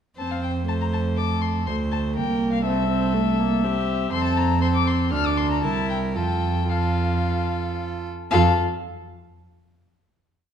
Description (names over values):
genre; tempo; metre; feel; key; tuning
quick classical-period movement for string quartet; 109-124 BPM; 4/4; rubato; F major; A4 = 439 Hz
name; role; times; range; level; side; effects
dark violin; melody; 0.2-8.6 s; E5 to F6; -28 LUFS; left 9 dB; none
warm violin; second line; 0.2-8.6 s; G4 to C5; -30 LUFS; left 4 dB; none
dark viola; accompaniment; 0.2-8.6 s; A3 to F4; -26 LUFS; right 2 dB; none
rich cello; bass; 0.2-8.6 s; C2 to F2; -24 LUFS; right 3 dB; none
room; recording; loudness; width
wet recital hall reverb, RT60 1.4 s; dark, warm production; -20 LUFS; side -8 dB against mid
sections
0.2-8.3 A section; 8.3-10.4 final chord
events
none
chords
0.2 F; 2.2 C7; 4.1 F; 5.1 D5; 5.6 C7; 6.2 F; 8.3 N.C.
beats
| 0.17 0.68 1.18 1.67 | 2.16 2.65 3.15 3.64 | 4.13 4.62 5.12 5.63 | 6.16 6.69 7.24 7.77 | 8.31